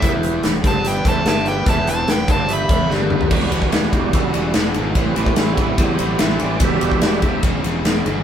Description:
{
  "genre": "blues rock power trio and southern rock",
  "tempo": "146 BPM",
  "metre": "4/4",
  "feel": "straight",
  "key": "E minor",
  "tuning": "A4 = 441 Hz",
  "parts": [
    { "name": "nasal lead guitar with a parked wah", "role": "melody", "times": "0.0-2.9 s", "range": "E5 to B5", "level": "-22 LUFS", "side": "equal", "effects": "overdrive" },
    { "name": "smooth overdriven lead guitar", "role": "second line", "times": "0.0-2.9 s", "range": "B4 to E5", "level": "-27 LUFS", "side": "right 3 dB", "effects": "none" },
    { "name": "overdriven tonewheel organ", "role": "sustained chords", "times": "0.0-7.4 s", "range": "G3 to E5", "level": "-25 LUFS", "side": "right 3 dB", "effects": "slow rotary speaker, chorus vibrato" },
    { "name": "raw garage guitar", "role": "riff", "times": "0.0-8.2 s", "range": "E2 to G3", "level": "-22 LUFS", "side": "equal", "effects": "overdrive" },
    { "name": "fuzz fingered electric bass", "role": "bass", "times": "0.0-8.2 s", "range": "E1 to E2", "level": "-24 LUFS", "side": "equal", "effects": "overdrive" },
    { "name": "big rock drum kit", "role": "drums", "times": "0.0-8.2 s", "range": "crash cymbal, hi-hat, kick drum, ride cymbal, snare drum, toms", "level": "-18 LUFS", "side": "equal", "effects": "none" }
  ],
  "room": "moderate studio reverb, RT60 0.6 s",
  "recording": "band playing live in one room",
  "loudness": "-15 LUFS",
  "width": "side -9 dB against mid",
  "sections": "0.0-3.3 A section; 3.3-8.2 B section",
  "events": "drum fill 2.9-3.3; tonewheel organ solo 3.3-8.2",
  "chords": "0.0 Em; 3.3 Em7; 5.0 Am7; 6.6 Em7"
}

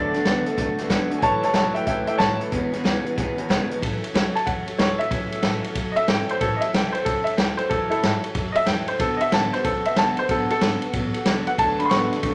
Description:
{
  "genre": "rockabilly",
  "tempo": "185 BPM",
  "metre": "4/4",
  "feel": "swing 64% on 8ths",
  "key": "A major",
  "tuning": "A4 = 440 Hz",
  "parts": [
    { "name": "warm upright piano", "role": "melody", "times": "0.0-12.3 s", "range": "E4 to C#6", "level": "-25 LUFS", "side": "equal", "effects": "none" },
    { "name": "picked steel-string acoustic guitar", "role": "accompaniment", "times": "0.0-12.3 s", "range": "A2 to A4", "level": "-31 LUFS", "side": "equal", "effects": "none" },
    { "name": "electric guitar through a small old amp", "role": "riff", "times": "0.0-3.8, 11.6-12.3 s", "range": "E2 to B3", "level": "-29 LUFS", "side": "equal", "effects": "none" },
    { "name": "upright bass", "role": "bass", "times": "0.0-12.3 s", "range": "F#1 to G#2", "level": "-37 LUFS", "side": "equal", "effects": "none" },
    { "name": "vintage drum kit", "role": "drums", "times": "0.1-12.3 s", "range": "hi-hat, kick drum, ride cymbal, snare drum", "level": "-27 LUFS", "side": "equal", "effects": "none" }
  ],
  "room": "wet large studio reverb, RT60 0.8 s",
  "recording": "none",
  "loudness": "-22 LUFS",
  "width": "mono",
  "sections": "0.0-3.8 A section; 3.8-12.3 B section",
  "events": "upright piano solo 3.8-12.3",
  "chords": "0.0 D6; 1.2 A6; 2.5 E6; 3.8 A6; 9.0 D6"
}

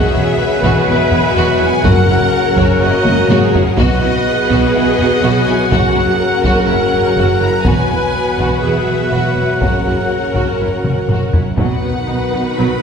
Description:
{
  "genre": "cinematic, epic orchestral film score",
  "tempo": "123 BPM",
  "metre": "4/4",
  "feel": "straight",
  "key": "F# mixolydian",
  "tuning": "A4 = 440 Hz",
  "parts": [
    { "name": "warm symphonic violin section", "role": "melody", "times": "0.0-12.8 s", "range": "C#5 to B5", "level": "-22 LUFS", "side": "left 4 dB", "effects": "none" },
    { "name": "warm symphonic violin section", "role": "second line", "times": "0.0-12.8 s", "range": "E4 to F#5", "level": "-22 LUFS", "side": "left 2 dB", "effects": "none" },
    { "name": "rich symphonic viola section", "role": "accompaniment", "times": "0.0-12.8 s", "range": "F#3 to B4", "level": "-20 LUFS", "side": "equal", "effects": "none" },
    { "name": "dark trombone section", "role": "sustained chords", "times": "0.0-12.8 s", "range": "B2 to B3", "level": "-22 LUFS", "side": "right 1 dB", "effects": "none" },
    { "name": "mellow French horn section", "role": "sustained chords", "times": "0.0-12.8 s", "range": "G#3 to F#4", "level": "-23 LUFS", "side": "left 5 dB", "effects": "none" },
    { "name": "rich symphonic string section", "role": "sustained chords", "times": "0.0-12.8 s", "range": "B3 to F#5", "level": "-22 LUFS", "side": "left 1 dB", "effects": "none" },
    { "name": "warm trumpet section", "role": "stabs", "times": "0.0-11.3 s", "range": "F#5", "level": "-21 LUFS", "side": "right 1 dB", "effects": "none" },
    { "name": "dark symphonic cello section", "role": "bass", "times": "0.1-12.7 s", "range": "E2 to B2", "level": "-20 LUFS", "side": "right 2 dB", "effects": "none" },
    { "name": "warm symphonic double bass section", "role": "bass", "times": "0.1-12.7 s", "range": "E1 to B1", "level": "-20 LUFS", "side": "right 2 dB", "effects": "none" },
    { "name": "taiko ensemble", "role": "drums", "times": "0.6-12.0 s", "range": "none", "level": "-19 LUFS", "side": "equal", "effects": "none" },
    { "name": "timpani", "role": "percussion", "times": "1.9-2.5 s", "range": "F#2", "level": "-21 LUFS", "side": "left 1 dB", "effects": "none" }
  ],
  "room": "wet scoring stage reverb, RT60 1.8 s",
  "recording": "heard from further back in the room",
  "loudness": "-11 LUFS",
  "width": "side -6 dB against mid",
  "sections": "0.0-11.6 A section; 11.6-12.8 B section",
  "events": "drum fill 3.1-3.8, 10.8-11.6",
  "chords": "0.0 Eadd9; 1.8 F#; 3.8 B; 5.7 F#; 7.6 Eadd9; 9.6 F#; 11.6 B"
}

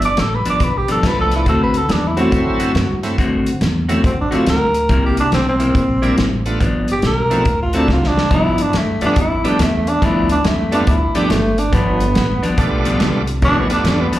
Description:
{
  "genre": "electric blues shuffle",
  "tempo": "140 BPM",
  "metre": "4/4",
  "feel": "swing 65% on 8ths",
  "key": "G mixolydian",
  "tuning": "A4 = 441 Hz",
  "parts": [
    { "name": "growling tenor saxophone", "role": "melody", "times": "0.0-14.2 s", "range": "A3 to D5", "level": "-18 LUFS", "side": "equal", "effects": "plate reverb, slapback echo" },
    { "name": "clean electric guitar", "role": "riff", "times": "0.0-14.2 s", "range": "G2 to F#4", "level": "-20 LUFS", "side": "left 2 dB", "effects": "slapback echo" },
    { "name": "upright bass", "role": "bass", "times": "0.0-14.2 s", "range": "G1 to G2", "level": "-20 LUFS", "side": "equal", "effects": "none" },
    { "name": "natural country drum kit", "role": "drums", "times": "0.0-14.2 s", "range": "hi-hat, kick drum, snare drum", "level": "-20 LUFS", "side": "equal", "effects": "slapback echo" },
    { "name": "bright tonewheel organ", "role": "accompaniment", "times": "1.0-14.1 s", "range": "F3 to A4", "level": "-22 LUFS", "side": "right 3 dB", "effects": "slow rotary speaker, overdrive, plate reverb, slapback echo" }
  ],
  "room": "light reverb",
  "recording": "live gig heard through the venue's PA, club reverb",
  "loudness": "-14 LUFS",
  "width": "side -14 dB against mid",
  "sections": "0.0-8.3 A section; 8.3-14.2 B section",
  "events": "drum fill 7.9-8.3; tenor saxophone solo 8.3-14.2",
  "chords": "0.0 G7; 1.5 D7; 4.9 C7; 6.6 G7; 7.5 D7; 8.3 G7"
}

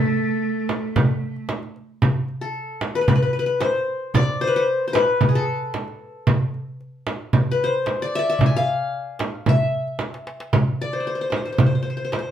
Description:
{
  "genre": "Arabic maqam ensemble",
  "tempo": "113 BPM",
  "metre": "4/4",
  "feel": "straight",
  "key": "A maqam nahawand",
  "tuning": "A4 = 440 Hz",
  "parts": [
    { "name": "qanun", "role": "melody", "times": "0.0-12.3 s", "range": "G#4 to G#5", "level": "-22 LUFS", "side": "left 3 dB", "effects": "none" },
    { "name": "bright cello", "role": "second line", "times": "0.0-1.5 s", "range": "A3", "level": "-25 LUFS", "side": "right 5 dB", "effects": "none" },
    { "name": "mellow clarinet", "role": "second line", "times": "0.0-1.5 s", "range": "A4", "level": "-29 LUFS", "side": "left 10 dB", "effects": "none" },
    { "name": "darbuka", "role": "percussion", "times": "0.0-12.3 s", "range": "none", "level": "-23 LUFS", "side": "left 1 dB", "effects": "none" },
    { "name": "frame drum", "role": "percussion", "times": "0.7-12.3 s", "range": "none", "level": "-22 LUFS", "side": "right 4 dB", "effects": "none" }
  ],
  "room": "moderate studio reverb, RT60 0.7 s",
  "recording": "band playing live in one room",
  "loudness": "-19 LUFS",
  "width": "side -10 dB against mid",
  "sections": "0.0-2.0 A section; 2.0-12.3 B section",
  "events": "drum fill 10.0-10.5",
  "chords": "none"
}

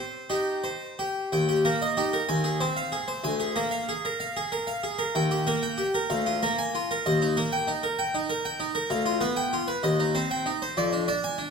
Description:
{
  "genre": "classical, baroque-style suite movement for harpsichord",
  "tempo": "63 BPM (dotted quarters)",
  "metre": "6/8",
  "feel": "rubato",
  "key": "Eb major",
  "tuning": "A4 = 436 Hz",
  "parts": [
    { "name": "harpsichord", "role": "solo", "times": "0.0-11.5 s", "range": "D2 to Ab5", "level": "-24 LUFS", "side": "equal", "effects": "none" }
  ],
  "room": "wet recital hall reverb, RT60 1.6 s",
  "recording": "none",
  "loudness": "-24 LUFS",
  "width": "side -5 dB against mid",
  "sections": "0.0-1.3 A section; 1.3-11.5 A section",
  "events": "none",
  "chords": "0.0 Cm; 1.3 Eb; 2.3 Fm7/Eb; 3.2 Bb7/D; 5.2 Eb; 6.1 Bb7/D; 7.1 Eb; 8.9 G7/D; 9.8 Cm/Eb; 10.8 Ddim/F"
}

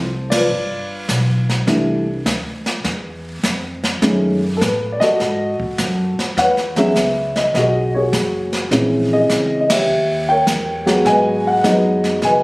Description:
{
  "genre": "jazz piano trio",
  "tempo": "102 BPM",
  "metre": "4/4",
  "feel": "swing 68% on 8ths",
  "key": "E major from 6.4 s",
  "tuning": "A4 = 440 Hz",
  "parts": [
    { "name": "dark upright piano", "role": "melody", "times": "0.0-12.4 s", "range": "D#3 to G#5", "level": "-16 LUFS", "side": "equal", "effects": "none" },
    { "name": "upright bass", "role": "bass", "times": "0.0-12.4 s", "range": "F#1 to C#3", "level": "-23 LUFS", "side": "equal", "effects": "none" },
    { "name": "jazz brush drum kit", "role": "drums", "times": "0.3-12.4 s", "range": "brushed snare drum, hi-hat, kick drum, ride cymbal, snare drum", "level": "-22 LUFS", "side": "equal", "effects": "none" }
  ],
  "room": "moderate large studio reverb, RT60 0.8 s",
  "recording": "recorded on a phone in the room, studio reverb",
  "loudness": "-15 LUFS",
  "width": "side -23 dB against mid",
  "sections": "0.0-6.4 A section; 6.4-12.4 B section",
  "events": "band accent 0.2, 9.6",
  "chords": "0.0 Dm7; 0.5 G7; 1.7 Cadd9; 4.0 F#m69; 6.4 E69; 8.7 A#m7b5; 9.9 D#7b9; 11.1 G#m7"
}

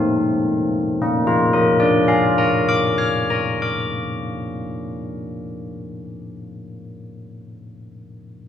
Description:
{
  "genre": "classical, tune for church bells",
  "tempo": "51 BPM",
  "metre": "3/4",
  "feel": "straight",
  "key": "Bb major",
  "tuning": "A4 = 440 Hz",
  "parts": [
    { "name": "carillon bells", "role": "solo", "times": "0.0-6.0 s", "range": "Bb3 to F6", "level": "-19 LUFS", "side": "left 1 dB", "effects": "none" }
  ],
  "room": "wet recital hall reverb, RT60 1.5 s",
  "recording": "recorded in a church or concert hall",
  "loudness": "-17 LUFS",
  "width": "side -9 dB against mid",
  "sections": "0.0-1.0 A section; 1.0-4.5 B section",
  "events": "none",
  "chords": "0.0 N.C.; 1.0 Bb"
}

